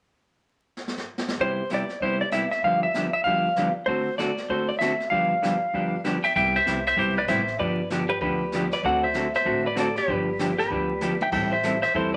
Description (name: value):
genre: country, western swing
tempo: 194 BPM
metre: 4/4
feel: swing 62% on 8ths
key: C major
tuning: A4 = 440 Hz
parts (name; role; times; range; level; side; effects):
- jazz brush drum kit; drums; 0.8-12.2 s; brushed snare drum, crash cymbal, hi-hat, kick drum, snare drum, toms; -38 LUFS; equal; none
- clean lap steel guitar; melody; 1.4-12.2 s; G4 to G5; -26 LUFS; equal; none
- vintage hollow-body jazz guitar; accompaniment; 1.4-12.2 s; G2 to A4; -29 LUFS; equal; none
- upright bass; bass; 6.4-12.2 s; G1 to E2; -39 LUFS; equal; none
room: wet studio reverb, RT60 0.6 s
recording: vinyl crackle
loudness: -24 LUFS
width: mono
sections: 0.2-1.4 A section; 1.4-6.4 B section; 6.4-12.2 C section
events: drum fill 0.8-1.4, 11.0-11.3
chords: 0.2 N.C.; 1.4 Cmaj7; 2.6 G7; 3.9 D7; 5.1 G7; 6.4 Cmaj7; 7.6 G7; 8.8 D7; 10.1 G7; 11.3 Am7